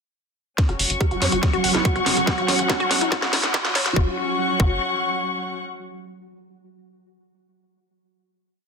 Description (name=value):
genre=psychedelic trance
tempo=142 BPM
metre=4/4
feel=straight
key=unclear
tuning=A4 = 440 Hz
part: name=pulsing gated texture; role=sustained chords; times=0.9-4.0 s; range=F#3 to F#4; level=-30 LUFS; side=right 4 dB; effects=chorus, built-in reverb, sidechain pumping
part: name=woody wave-folded pluck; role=riff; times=0.6-4.8 s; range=E4 to F#5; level=-27 LUFS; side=moving between left 7 dB and right 2 dB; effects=chorus, auto-pan, sidechain pumping, digital delay
part: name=drum and bass drum kit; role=drums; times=0.6-3.9 s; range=hi-hat, rim click, snare drum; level=-23 LUFS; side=equal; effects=none
part: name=electronic kick drum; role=drums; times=0.6-4.7 s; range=none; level=-20 LUFS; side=equal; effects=none
part: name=riser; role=sound effects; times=1.9-4.0 s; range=none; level=-33 LUFS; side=right 1 dB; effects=none
part: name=muted studio string section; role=texture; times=0.6-5.6 s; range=C#4 to C#6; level=-24 LUFS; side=left 2 dB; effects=sidechain pumping
part: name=tight sequencer bass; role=bass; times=0.7-4.8 s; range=E1 to F#2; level=-30 LUFS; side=equal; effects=none
part: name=metallic wobble bass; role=second line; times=1.7-2.3 s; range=F#3 to B3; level=-37 LUFS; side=right 4 dB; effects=none
room=moderate digital room reverb, RT60 1.2 s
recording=dense, heavily limited modern master, high-pass filter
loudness=-19 LUFS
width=side -5 dB against mid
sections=0.6-4.0 build; 4.0-5.7 final chord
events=build-up 0.6-4.0; drum fill 0.6-4.0; filter sweep on synth arpeggio sound 0.6-4.0; filter sweep on synth texture 0.6-4.0; riser 1.9-4.0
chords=0.6 F#5